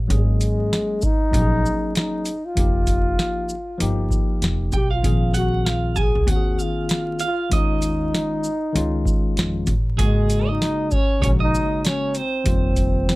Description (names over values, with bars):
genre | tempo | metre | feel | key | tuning
hip hop, jazz-hop | 97 BPM | 4/4 | swing 58% on 16ths | unclear | A4 = 441 Hz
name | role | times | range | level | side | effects
upright bass | bass | 0.0-13.2 s | F1 to F2 | -23 LUFS | equal | none
breathy trombone | melody | 0.1-13.2 s | Ab3 to Ab4 | -24 LUFS | equal | none
tine electric piano | accompaniment | 0.1-13.2 s | Db3 to Ab4 | -27 LUFS | left 2 dB | medium stereo tremolo
booming analog drum machine | drums | 0.1-13.2 s | hi-hat, kick drum, shaker, snare drum | -22 LUFS | equal | none
electric guitar at the edge of break-up | second line | 4.7-13.2 s | Ab4 to Ab5 | -30 LUFS | right 7 dB | none
room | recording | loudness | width
little or no reverb | vinyl crackle | -18 LUFS | side -20 dB against mid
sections
0.0-13.2 A section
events
none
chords
0.1 Ab9sus4; 2.6 F9sus4; 5.0 Bb9sus4; 7.5 Eb9sus4; 10.0 Ab9sus4; 12.5 F9sus4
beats
| 0.09 0.71 1.33 1.95 | 2.57 3.18 3.80 4.42 | 5.04 5.66 6.28 6.90 | 7.51 8.13 8.75 9.37 | 9.99 10.61 11.23 11.84 | 12.46 13.08